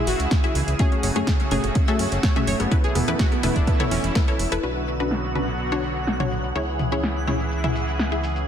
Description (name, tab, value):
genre	progressive house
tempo	125 BPM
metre	4/4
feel	straight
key	B dorian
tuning	A4 = 440 Hz
part	filtered supersaw swell	sustained chords	0.0-8.5 s	B2 to G#4	-29 LUFS	right 2 dB	sidechain pumping
part	analog pluck	arpeggios	0.0-4.5 s	B3 to C#5	-28 LUFS	right 1 dB	chorus, cassette tape, sidechain pumping, tape echo
part	wide unison pluck	stabs	0.0-8.4 s	A3 to E5	-27 LUFS	left 3 dB	sidechain pumping, tape echo
part	twinkling granular texture	texture	0.0-8.5 s	E5 to F#5	-36 LUFS	equal	built-in reverb, sidechain pumping
part	fat analog bass	bass	0.1-8.5 s	E1 to F#2	-27 LUFS	equal	tube saturation, sidechain pumping
part	deep house drum kit	drums	0.1-8.5 s	hi-hat, rim click, shaker, snare drum	-29 LUFS	equal	overdrive, sidechain pumping on hats, low-pass filter on hats, studio ambience, low-pass filter on snare, sidechain pumping on perc, low-pass filter on perc
part	electronic kick drum	drums	0.3-4.3 s	none	-21 LUFS	equal	overdrive, studio ambience
part	electronic congas and toms	percussion	1.2-7.7 s	none	-29 LUFS	equal	sidechain pumping on toms, studio ambience, sidechain pumping on perc
room	light reverb, digital ambience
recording	dense, heavily limited modern master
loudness	-20 LUFS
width	side -9 dB against mid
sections	0.0-4.6 A section; 4.6-8.5 B section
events	filter sweep on drum 4.6-8.5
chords	0.0 C#m; 0.8 F#madd9; 2.7 Esus4; 4.6 Bm; 6.6 C#m